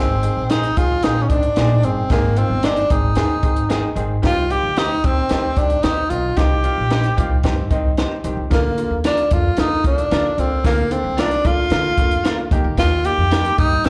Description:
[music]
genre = uptempo 1960s-style soul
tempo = 112 BPM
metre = 4/4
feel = straight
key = unclear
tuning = A4 = 440 Hz
[part]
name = breathy tenor saxophone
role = melody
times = 0.0-13.9 s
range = Bb3 to G4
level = -22 LUFS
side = equal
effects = slapback echo
[part]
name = clear baby grand piano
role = accompaniment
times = 0.0-13.9 s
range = D3 to Ab4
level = -28 LUFS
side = equal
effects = slapback echo
[part]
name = upright bass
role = bass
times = 0.0-13.9 s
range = F1 to D3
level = -24 LUFS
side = equal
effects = none
[part]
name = compact cocktail drum kit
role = drums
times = 0.2-13.9 s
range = hi-hat, kick drum, snare drum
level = -22 LUFS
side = equal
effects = none
[part]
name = clean electric guitar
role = stabs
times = 0.5-13.4 s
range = D4 to C5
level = -30 LUFS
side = equal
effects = slapback echo
[sound]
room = light reverb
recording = live gig heard through the venue's PA, club reverb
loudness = -18 LUFS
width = mono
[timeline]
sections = 0.0-13.9 A section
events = none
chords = 0.0 Ab; 4.2 Cm; 8.5 Bb; 12.5 Eb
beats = 0.50 1.03 1.57 | 2.10 2.64 3.17 3.70 | 4.24 4.77 5.31 5.84 | 6.37 6.91 7.44 7.98 | 8.51 9.04 9.58 10.11 | 10.64 11.18 11.71 12.25 | 12.78 13.31 13.85

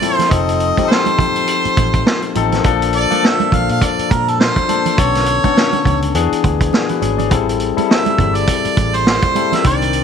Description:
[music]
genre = lush 1970s-style soul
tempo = 103 BPM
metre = 4/4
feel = swing 58% on 16ths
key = unclear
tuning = A4 = 444 Hz
[part]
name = warm harmonica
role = melody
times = 0.0-10.0 s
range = A4 to F5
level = -18 LUFS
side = right 3 dB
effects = none
[part]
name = barky tine electric piano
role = accompaniment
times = 0.0-10.0 s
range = D3 to D5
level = -18 LUFS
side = left 12 dB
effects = none
[part]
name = vintage drum kit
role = drums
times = 0.0-10.0 s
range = hi-hat, kick drum, snare drum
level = -18 LUFS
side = right 1 dB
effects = none
[part]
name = congas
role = percussion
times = 0.0-9.9 s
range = none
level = -25 LUFS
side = right 14 dB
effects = none
[part]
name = vintage muted fingered electric bass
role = bass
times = 0.3-10.0 s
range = F1 to Bb2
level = -20 LUFS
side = right 1 dB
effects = none
[sound]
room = light reverb, studio reverb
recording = 1960s-style stereo with parts hard left and right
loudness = -12 LUFS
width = side -7 dB against mid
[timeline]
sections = 0.0-10.0 A section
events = none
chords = 0.3 F7; 2.6 Bbmaj7; 5.0 Bm9; 6.1 E7; 7.3 Am7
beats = | 0.31 0.90 1.48 2.06 | 2.65 3.23 3.81 4.40 | 4.98 5.57 6.15 6.73 | 7.32 7.90 8.48 9.07 | 9.65

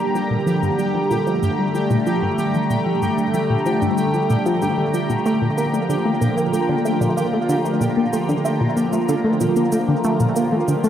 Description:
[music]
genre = ambient, sequencer-driven space music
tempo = 94 BPM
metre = 4/4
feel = straight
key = G minor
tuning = A4 = 443 Hz
[part]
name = phased analog pad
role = sustained chords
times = 0.0-10.9 s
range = D3 to Bb5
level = -20 LUFS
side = equal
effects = phaser, chorus
[part]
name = tight sequenced synth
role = riff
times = 0.0-10.9 s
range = G2 to Bb3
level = -21 LUFS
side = equal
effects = chorus, tape echo
[part]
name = pulsing gated texture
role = texture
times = 0.0-10.9 s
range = G4 to G5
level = -28 LUFS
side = right 1 dB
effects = chorus, built-in reverb
[part]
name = electronic shaker and toms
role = percussion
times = 0.2-10.9 s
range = none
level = -33 LUFS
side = left 1 dB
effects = tape echo
[sound]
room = wet plate reverb, RT60 2.8 s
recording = none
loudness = -17 LUFS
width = side -10 dB against mid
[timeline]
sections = 0.0-10.9 A section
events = fade-in on drum 0.0-10.9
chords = 0.0 Gm; 5.3 Bb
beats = | 0.15 0.79 1.43 2.07 | 2.70 3.34 3.98 4.62 | 5.26 5.90 6.53 7.17 | 7.81 8.45 9.09 9.73 | 10.36

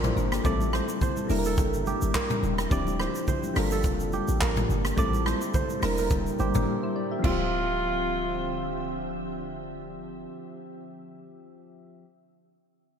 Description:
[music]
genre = afrobeats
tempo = 106 BPM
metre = 4/4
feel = swing 55% on 16ths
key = D minor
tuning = A4 = 440 Hz
[part]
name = soft electric-piano-like synth keys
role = accompaniment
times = 0.0-12.0 s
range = F3 to E5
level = -32 LUFS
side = left 2 dB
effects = chorus
[part]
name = glassy FM pad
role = sustained chords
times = 0.0-10.3 s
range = C3 to E5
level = -34 LUFS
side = left 1 dB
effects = ensemble chorus, built-in reverb
[part]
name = kora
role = riff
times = 0.0-8.9 s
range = F4 to D5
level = -33 LUFS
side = right 6 dB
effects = ping-pong delay
[part]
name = warm 808-style bass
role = bass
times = 0.0-10.3 s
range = D1 to A1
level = -30 LUFS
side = equal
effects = none
[part]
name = swinging big-band drum kit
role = drums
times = 0.0-7.4 s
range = crash cymbal, handclaps, hi-hat, kick drum, rim click, shaker, toms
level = -29 LUFS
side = equal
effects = none
[part]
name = congas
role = percussion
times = 0.0-7.5 s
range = none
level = -38 LUFS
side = right 3 dB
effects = none
[part]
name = breathy alto saxophone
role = melody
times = 7.2-8.9 s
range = F4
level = -30 LUFS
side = equal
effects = ping-pong delay
[sound]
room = moderate lush hall reverb, RT60 2.0 s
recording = bright 1980s-style digital production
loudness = -24 LUFS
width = side -7 dB against mid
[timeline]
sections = 0.0-7.2 A section; 7.2-9.5 B section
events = break 6.7-7.2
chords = 0.4 Am7; 1.3 Em7b5; 2.7 Dm11; 3.6 Gm9; 5.0 Am7; 5.8 Em7b5; 7.2 Dm11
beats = | 0.45 1.01 1.58 2.15 | 2.71 3.28 3.84 4.41 | 4.98 5.54 6.11 6.67 | 7.24 7.81 8.37 8.94

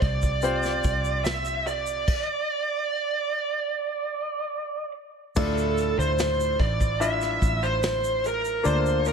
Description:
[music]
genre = pop ballad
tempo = 73 BPM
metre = 4/4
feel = straight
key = D minor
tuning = A4 = 440 Hz
[part]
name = bluesy overdriven lead guitar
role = melody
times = 0.0-9.1 s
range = A4 to E5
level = -26 LUFS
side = right 3 dB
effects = distortion
[part]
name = clear baby grand piano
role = accompaniment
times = 0.0-9.1 s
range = A2 to E5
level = -30 LUFS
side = left 4 dB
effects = none
[part]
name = vintage muted fingered electric bass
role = bass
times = 0.0-9.1 s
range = A1 to D2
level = -29 LUFS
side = equal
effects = none
[part]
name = vintage brush drum kit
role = drums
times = 0.0-9.1 s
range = crash cymbal, hi-hat, kick drum, snare drum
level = -27 LUFS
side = equal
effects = none
[part]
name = tube shaker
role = percussion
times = 0.2-9.1 s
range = none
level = -41 LUFS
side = right 8 dB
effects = none
[sound]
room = light reverb, small room ambience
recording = none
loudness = -23 LUFS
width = side -6 dB against mid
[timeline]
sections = 0.0-5.4 A section; 5.4-9.1 A section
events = stop 2.1-5.4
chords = 0.0 Fsus2; 2.1 N.C.; 5.4 Dmadd9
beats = 0.43 1.25 | 2.08 2.90 3.72 4.54 | 5.36 6.19 7.01 7.83 | 8.65

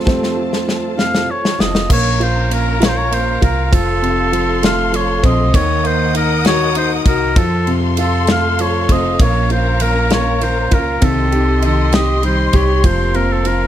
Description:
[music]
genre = six-eight pop ballad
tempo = 66 BPM (dotted quarters)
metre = 6/8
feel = straight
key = Bb harmonic minor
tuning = A4 = 441 Hz
[part]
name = clear concert grand piano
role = accompaniment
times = 0.0-13.7 s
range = C3 to G4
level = -19 LUFS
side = right 1 dB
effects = none
[part]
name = warm studio string section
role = sustained chords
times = 0.0-13.7 s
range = Db4 to Eb6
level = -24 LUFS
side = left 3 dB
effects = none
[part]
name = fingerpicked steel-string acoustic guitar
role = arpeggios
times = 0.0-1.9, 9.2-13.7 s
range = F2 to G4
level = -25 LUFS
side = right 2 dB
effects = none
[part]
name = upright bass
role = bass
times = 0.0-13.7 s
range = F1 to F2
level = -18 LUFS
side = equal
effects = none
[part]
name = natural country drum kit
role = drums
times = 0.1-13.6 s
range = crash cymbal, kick drum, ride cymbal, snare drum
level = -18 LUFS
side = equal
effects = none
[part]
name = warm oboe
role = melody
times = 1.0-13.7 s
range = A4 to F5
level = -19 LUFS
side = equal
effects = none
[sound]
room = small room reverb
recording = none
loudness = -13 LUFS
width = side -11 dB against mid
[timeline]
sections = 0.0-1.9 A section; 1.9-13.7 B section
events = grand piano solo 0.0-1.9; drum fill 0.1-1.9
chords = 0.0 F; 1.9 Bbm; 3.7 F; 5.5 Ebm; 7.4 F; 9.2 Bbm; 11.0 Cm; 12.8 Fsus4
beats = | 0.07 0.98 | 1.90 2.81 | 3.72 4.63 | 5.54 6.45 | 7.37 8.28 | 9.20 10.11 | 11.03 11.93 | 12.84

